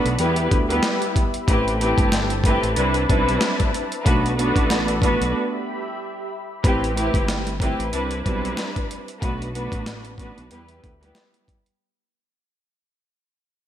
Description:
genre	hip hop, boom-bap hip-hop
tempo	93 BPM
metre	4/4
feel	swing 56% on 16ths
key	A dorian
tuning	A4 = 440 Hz
part	muted studio string section	accompaniment	0.0-11.4 s	G3 to B4	-22 LUFS	equal	high-pass filter, low-pass filter
part	dark analog pad	sustained chords	0.0-6.6 s	G4 to B5	-30 LUFS	left 1 dB	chorus, tremolo, high-pass filter, low-pass filter
part	fat analog bass	bass	0.1-11.1 s	G1 to E2	-26 LUFS	equal	none
part	dusty soul sampler-style drum kit	drums	0.1-11.8 s	hi-hat, kick drum, snare drum	-22 LUFS	equal	overdrive, gated reverb
room	light reverb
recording	bright 1980s-style digital production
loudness	-19 LUFS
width	side -10 dB against mid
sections	0.0-6.6 A section; 6.6-11.8 B section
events	break 5.3-6.6; fade-out 6.6-11.8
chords	0.2 Em; 1.5 Am7; 2.8 Cmaj7; 4.1 Bm7; 5.3 Em; 6.6 Am7; 7.9 Cmaj7; 9.2 Bm7; 10.5 Em

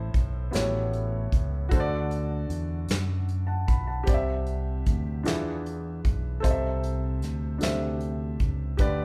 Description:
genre	slow gospel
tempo	51 BPM (dotted quarters)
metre	6/8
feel	straight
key	unclear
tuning	A4 = 441 Hz
part	warm upright piano	accompaniment	0.0-9.0 s	A2 to B5	-33 LUFS	equal	none
part	fingered electric bass	bass	0.0-9.0 s	A1 to F#2	-32 LUFS	equal	none
part	soft brush drum kit	drums	0.1-9.0 s	hi-hat, kick drum, snare drum	-29 LUFS	equal	none
room	light reverb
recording	band playing live in one room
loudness	-28 LUFS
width	mono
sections	0.0-9.0 A section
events	none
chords	0.0 Am; 0.5 A13; 1.7 D; 4.1 C; 5.3 E7b9; 6.4 Am/C; 7.6 D9sus4

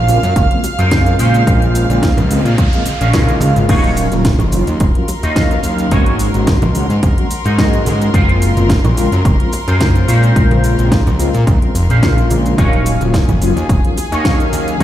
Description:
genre	nu-disco, nu disco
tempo	108 BPM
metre	4/4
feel	swing 54% on 16ths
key	Eb dorian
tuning	A4 = 439 Hz
part	warm studio string section	sustained chords	0.0-14.8 s	Ab4 to F6	-24 LUFS	right 2 dB	sidechain pumping
part	fat analog bass	bass	0.0-14.8 s	Eb1 to Bb2	-15 LUFS	equal	sidechain pumping
part	mellow synth brass	accompaniment	0.1-14.8 s	Db3 to F5	-18 LUFS	equal	chorus, ping-pong delay
part	electric guitar with an envelope filter	riff	0.1-14.8 s	Db4 to Eb5	-23 LUFS	equal	analog chorus, ping-pong delay
part	house drum kit	drums	0.1-14.8 s	cabasa, crash cymbal, hi-hat, snare drum	-24 LUFS	equal	overdrive
part	maracas, bongos and congas	percussion	0.1-14.8 s	none	-22 LUFS	right 2 dB	none
part	electronic kick drum	drums	0.4-14.8 s	none	-15 LUFS	equal	overdrive
part	noise sweep	sound effects	2.1-3.7 s	none	-27 LUFS	right 1 dB	none
room	little or no reverb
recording	played on a big sound system in a bare room, large studio reverb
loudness	-11 LUFS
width	side -12 dB against mid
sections	0.0-14.8 A section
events	noise sweep 2.1-3.7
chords	0.0 Gbmaj9#11; 1.2 Bbm9; 3.7 Ebm9; 5.9 Ab7sus4; 8.1 Gbmaj9#11; 10.1 Bbm9; 12.6 Ebm9

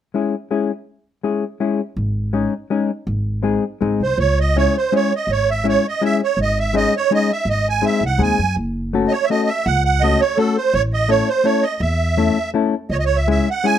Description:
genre	musette waltz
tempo	164 BPM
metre	3/4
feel	straight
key	C# harmonic minor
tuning	A4 = 440 Hz
part	hollow-body jazz guitar	accompaniment	0.1-13.8 s	G#3 to A4	-19 LUFS	left 5 dB	none
part	upright bass	bass	2.0-13.4 s	F#1 to F#2	-20 LUFS	equal	none
part	musette accordion	melody	4.0-13.8 s	A4 to G#5	-18 LUFS	right 5 dB	none
room	light reverb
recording	none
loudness	-16 LUFS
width	side -10 dB against mid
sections	0.0-4.2 A section; 4.2-13.8 B section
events	none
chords	0.0 C#m; 2.0 G#sus4; 3.1 G#; 4.2 C#m; 6.4 G#sus4; 7.5 G#; 8.6 F#m; 10.7 A; 12.9 C#m

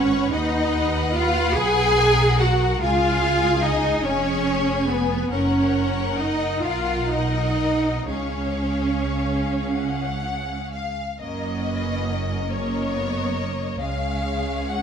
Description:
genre	classical, slow romantic movement for string orchestra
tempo	35-51 BPM (dotted quarters)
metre	6/8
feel	rubato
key	F# major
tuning	A4 = 440 Hz
part	warm symphonic violin section	melody	0.0-14.8 s	B4 to G#5	-27 LUFS	left 5 dB	none
part	warm symphonic violin section	second line	0.0-14.8 s	F#4 to G#5	-29 LUFS	left 4 dB	none
part	rich symphonic viola section	accompaniment	0.0-14.8 s	G#3 to G#4	-26 LUFS	right 1 dB	none
part	rich symphonic cello section	bass	0.0-14.8 s	F#2 to G#4	-26 LUFS	right 2 dB	none
part	rich symphonic double bass section	bass	0.0-14.8 s	E#1 to D#2	-26 LUFS	right 2 dB	none
room	light reverb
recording	close, detailed microphones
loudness	-20 LUFS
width	side -7 dB against mid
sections	0.0-11.2 A section; 11.2-14.8 B section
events	none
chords	0.3 B/D#; 2.8 C#; 5.3 F#; 6.6 Bmaj7; 8.1 C#; 11.2 F#; 13.8 C#

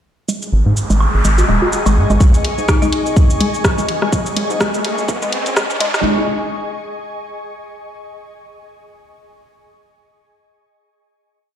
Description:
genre	minimal techno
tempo	125 BPM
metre	4/4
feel	swing 57% on 16ths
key	unclear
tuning	A4 = 440 Hz
part	hollow square pluck	riff	0.3-5.9 s	G#3	-22 LUFS	left 1 dB	chorus, sidechain pumping, tape echo
part	house drum kit	drums	0.3-6.0 s	cabasa, hi-hat, rim click	-21 LUFS	equal	small room ambience
part	noise sweep and riser	sound effects	0.7-6.0 s	none	-23 LUFS	right 1 dB	none
part	ethereal airy pad	texture	0.7-6.0 s	G#4 to C#6	-24 LUFS	left 1 dB	ensemble chorus, built-in reverb, sidechain pumping
part	rubbery square bass	bass	0.5-6.0 s	D#1 to G#2	-17 LUFS	equal	sidechain pumping, high-pass filter
part	woodblock and congas	percussion	1.0-1.9 s	none	-20 LUFS	equal	small room ambience, ping-pong delay
part	electronic kick drum	drums	2.2-5.7 s	none	-14 LUFS	equal	small room ambience
part	folk marimba with hard mallets	melody	2.7-2.9 s	D#4	-23 LUFS	left 4 dB	ping-pong delay
room	moderate lush hall reverb, RT60 1.7 s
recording	played on a big sound system in a bare room, stone room reverb, high-pass filter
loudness	-13 LUFS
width	side -10 dB against mid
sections	0.3-2.2 intro; 2.2-6.0 build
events	filter sweep on synth arpeggio sound 0.3-2.2, 2.2-6.0; noise sweep 0.7-2.2; build-up 2.2-6.0; riser 2.2-6.0; filter sweep 2.2-6.0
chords	0.3 G#sus4

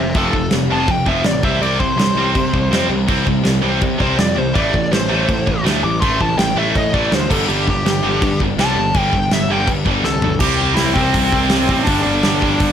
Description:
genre	punk rock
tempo	164 BPM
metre	4/4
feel	straight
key	unclear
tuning	A4 = 441 Hz
part	smooth overdriven lead guitar	melody	0.0-12.7 s	C4 to D6	-20 LUFS	equal	none
part	tight distorted guitar	riff	0.0-12.7 s	F2 to C4	-19 LUFS	right 1 dB	distortion
part	fuzz picked electric bass	bass	0.0-12.7 s	F1 to C3	-21 LUFS	equal	overdrive
part	big rock drum kit	drums	0.1-12.7 s	crash cymbal, hi-hat, kick drum, snare drum, toms	-19 LUFS	equal	none
room	light reverb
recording	none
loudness	-14 LUFS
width	side -9 dB against mid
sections	0.0-10.4 A section; 10.4-12.7 B section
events	lead electric guitar solo 0.0-10.4; drum fill 10.0-10.4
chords	0.0 F; 1.4 C5; 4.6 Am; 7.3 G5; 10.4 C5; 11.9 G5

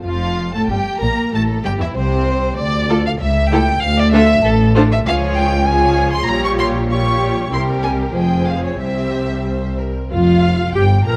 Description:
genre	quick classical-period movement for string orchestra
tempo	96 BPM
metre	2/4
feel	rubato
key	unclear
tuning	A4 = 441 Hz
part	muted chamber violin section	melody	0.0-11.2 s	A4 to Db6	-22 LUFS	equal	none
part	muted chamber viola section	accompaniment	0.0-11.2 s	C3 to Bb4	-24 LUFS	equal	none
part	muted chamber violin section	second line	0.1-11.2 s	C4 to Bb5	-26 LUFS	equal	none
part	muted chamber cello section	bass	0.1-11.2 s	C2 to C3	-22 LUFS	equal	none
part	muted chamber double bass section	bass	0.1-11.2 s	F1 to D2	-23 LUFS	equal	none
room	light reverb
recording	close, detailed microphones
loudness	-16 LUFS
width	mono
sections	0.1-10.1 A section; 10.1-11.2 B section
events	none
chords	0.1 F; 0.7 Gm; 1.3 Am7/G; 2.6 Dm; 3.2 A7/C#; 3.8 Dm; 5.1 Db; 6.3 Gm7b5/Bb; 7.5 C7(no3); 8.2 Fm; 8.8 C; 10.1 N.C.

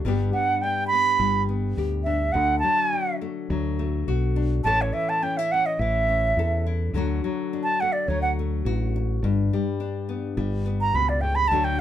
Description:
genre	highlife guitar band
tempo	104 BPM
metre	4/4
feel	straight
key	D major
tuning	A4 = 443 Hz
part	nylon-string guitar	accompaniment	0.0-11.8 s	G2 to A4	-28 LUFS	left 5 dB	none
part	fingered electric bass	bass	0.0-11.8 s	G1 to E2	-25 LUFS	equal	none
part	wooden flute	melody	0.3-11.8 s	C#5 to B5	-22 LUFS	right 3 dB	none
room	light reverb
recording	band playing live in one room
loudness	-21 LUFS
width	side -11 dB against mid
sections	0.0-11.8 A section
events	flute solo 0.0-11.8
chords	0.0 G; 2.3 D; 4.6 A; 6.9 D; 9.2 G

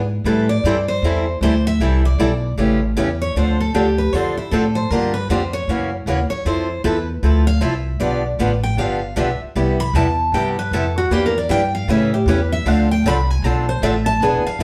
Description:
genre	acoustic string swing (jazz manouche)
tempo	155 BPM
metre	4/4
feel	swing 62% on 8ths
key	unclear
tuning	A4 = 439 Hz
part	upright bass	bass	0.0-14.6 s	E1 to A2	-21 LUFS	equal	none
part	picked steel-string acoustic guitar	second line	0.3-14.6 s	E4 to B5	-25 LUFS	equal	none
part	picked steel-string acoustic guitar	accompaniment	0.3-14.6 s	C3 to A4	-23 LUFS	equal	none
room	wet studio reverb, RT60 0.7 s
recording	heard from further back in the room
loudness	-18 LUFS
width	mono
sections	0.0-3.4 A section; 3.4-14.6 A section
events	steel-string acoustic guitar solo 0.0-14.6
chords	0.2 Am9; 2.6 A7; 3.4 Dm7; 4.9 Gm7; 5.7 F#7; 6.5 Fmaj7; 8.0 G7; 9.6 Cmaj7; 11.1 Em7b5; 11.9 A7; 12.7 Dm7

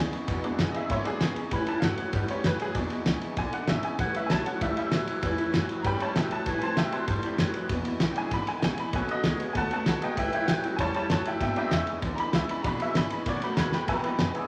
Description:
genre	rockabilly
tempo	194 BPM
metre	4/4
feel	straight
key	unclear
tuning	A4 = 440 Hz
part	honky-tonk upright piano	accompaniment	0.0-14.4 s	D#3 to C6	-34 LUFS	equal	none
part	picked steel-string acoustic guitar	accompaniment	0.0-14.5 s	E2 to F#4	-39 LUFS	equal	none
part	electric guitar through a small old amp	riff	0.0-14.5 s	E2 to A3	-34 LUFS	equal	harmonic tremolo
part	upright bass	bass	0.0-14.4 s	G#1 to B2	-38 LUFS	equal	none
part	cloth-damped thuddy drum kit	drums	0.1-14.4 s	kick drum, ride cymbal, snare drum	-32 LUFS	equal	none
part	electric guitar through a small old amp	melody	13.9-14.5 s	E4 to B4	-33 LUFS	equal	spring reverb
room	moderate large studio reverb, RT60 1.3 s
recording	vinyl crackle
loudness	-28 LUFS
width	mono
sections	0.0-13.9 A section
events	honky-tonk piano solo 0.0-13.9; drum fill 13.7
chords	0.0 E7; 1.5 A7; 2.8 E7; 4.0 A7; 6.5 Am7; 7.7 E7; 8.9 B7; 10.2 A7; 11.4 E7; 13.3 B7; 13.9 E7

